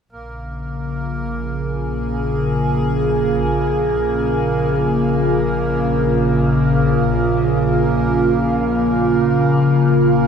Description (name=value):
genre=ambient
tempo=free time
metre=none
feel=none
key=Bb minor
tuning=A4 = 442 Hz
part: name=evolving wavetable pad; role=sustained chords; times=0.5-10.3 s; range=Db3 to Bb4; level=-16 LUFS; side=equal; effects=chorus, built-in reverb, phaser, shimmer reverb
part: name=rich symphonic double bass section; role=bass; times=0.1-10.3 s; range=Bb1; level=-24 LUFS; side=equal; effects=none
part: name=hand-pumped harmonium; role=drone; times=0.1-10.3 s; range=Bb3 to Bb4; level=-29 LUFS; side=right 2 dB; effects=none
room=wet huge ambient reverb, RT60 7.5 s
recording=none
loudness=-15 LUFS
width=side -7 dB against mid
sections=0.1-10.3 A section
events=fade-in on harmonium 0.1-10.3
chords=0.1 Bbm7